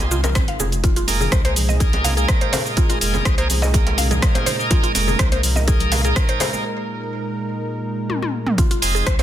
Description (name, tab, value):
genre	afro house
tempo	124 BPM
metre	4/4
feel	straight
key	F minor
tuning	A4 = 438 Hz
part	warm analog pad	sustained chords	0.0-9.2 s	Bb2 to Bb4	-27 LUFS	right 2 dB	chorus, sidechain pumping
part	bright tonewheel organ	stabs	0.0-9.2 s	Bb3 to Bb4	-25 LUFS	right 2 dB	overdrive, slow rotary speaker, vintage 12-bit sampler grit, sidechain pumping, digital delay
part	warm sub bass	bass	0.0-9.2 s	F1 to C2	-21 LUFS	equal	sidechain pumping
part	deep house drum kit	drums	0.0-9.2 s	hi-hat, rim click, shaker, toms	-23 LUFS	equal	overdrive, studio reverb
part	congas	percussion	0.0-6.5 s	none	-31 LUFS	left 4 dB	none
part	djembe	percussion	0.0-9.2 s	none	-31 LUFS	right 3 dB	none
part	mallet-like synth pluck	arpeggios	0.1-9.2 s	C4 to F5	-26 LUFS	left 1 dB	chorus, sidechain pumping, digital delay
part	electronic kick drum	drums	0.4-9.2 s	none	-18 LUFS	equal	studio reverb
room	light reverb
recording	dense, heavily limited modern master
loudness	-16 LUFS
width	side -11 dB against mid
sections	0.0-8.6 A section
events	break 6.6-8.6; drum fill 8.1-8.6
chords	0.0 Fm7